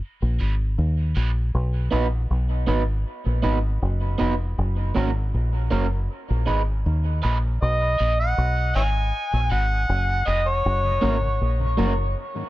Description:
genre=reggae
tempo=79 BPM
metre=4/4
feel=straight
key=B major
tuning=A4 = 438 Hz
part: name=deep dub fingered electric bass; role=bass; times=0.2-12.1 s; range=E#1 to D#2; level=-22 LUFS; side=equal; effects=none
part: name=electric guitar at the edge of break-up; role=accompaniment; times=0.4-11.9 s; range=A#3 to B4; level=-28 LUFS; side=right 3 dB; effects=high-pass filter, dub echo
part: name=overdriven harmonica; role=melody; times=7.6-11.6 s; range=C#5 to G#5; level=-24 LUFS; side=equal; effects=dub echo
part: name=mellow tonewheel organ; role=accompaniment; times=7.8-12.4 s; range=F#2 to D#4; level=-30 LUFS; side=left 3 dB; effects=slow rotary speaker, high-pass filter, dub echo
room=light reverb, small room ambience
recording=echo-heavy mix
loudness=-20 LUFS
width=side -16 dB against mid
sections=0.0-12.5 A section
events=break 0.0-7.6; filter sweep 4.6-10.6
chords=0.0 G#m; 1.5 B; 4.6 F#; 6.1 G#m; 7.6 B; 10.6 F#

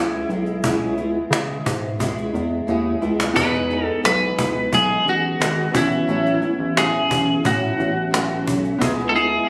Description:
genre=indie pop, bedroom pop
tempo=88 BPM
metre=4/4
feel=straight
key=unclear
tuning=A4 = 445 Hz
part: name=electric guitar at the edge of break-up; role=melody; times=0.0-9.5 s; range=E4 to B4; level=-23 LUFS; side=equal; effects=subtle chorus, digital delay
part: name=flamenco guitar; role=accompaniment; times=0.0-9.5 s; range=A2 to E4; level=-27 LUFS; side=equal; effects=subtle chorus, vibrato effect
part: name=round analog bass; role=bass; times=0.0-9.4 s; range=G#1 to C#3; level=-28 LUFS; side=equal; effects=none
part: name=cajon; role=drums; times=0.3-9.2 s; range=none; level=-26 LUFS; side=equal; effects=none
part: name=warm analog keys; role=accompaniment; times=3.3-9.5 s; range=B3 to G#4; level=-28 LUFS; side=equal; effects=chorus
room=light reverb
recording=recorded on a phone in the room, studio reverb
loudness=-20 LUFS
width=mono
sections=0.0-3.4 A section; 3.4-9.5 B section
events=drum fill 2.0-3.4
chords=0.0 C#m7; 3.4 Emaj7; 5.7 A6; 8.8 C#m7

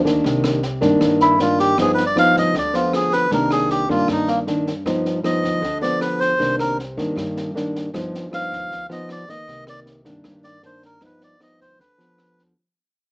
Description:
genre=bossa nova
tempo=156 BPM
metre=4/4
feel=straight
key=C minor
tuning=A4 = 439 Hz
part: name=nylon-string guitar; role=accompaniment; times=0.0-12.5 s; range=G2 to Eb4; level=-20 LUFS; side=equal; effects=none
part: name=upright bass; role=bass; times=0.0-12.5 s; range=G1 to G2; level=-30 LUFS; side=equal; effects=none
part: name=open jazz drum kit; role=drums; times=0.1-12.4 s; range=kick drum, rim click, snare drum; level=-30 LUFS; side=equal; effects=none
part: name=melodica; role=melody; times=1.2-12.4 s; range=Bb3 to F5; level=-19 LUFS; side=equal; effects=none
room=moderate studio reverb, RT60 0.6 s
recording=worn, warbling old tape, cassette tape, warbly pitch drift, small speaker sound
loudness=-17 LUFS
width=side -39 dB against mid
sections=0.2-12.6 A section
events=fade-out 0.2-12.6; melodica solo 0.2-12.6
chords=0.2 Cm9; 1.8 G7b13; 3.3 Cm9; 4.8 G7b13; 6.4 Cm9; 7.9 G7b13; 9.5 Cm9; 11.0 G7b13

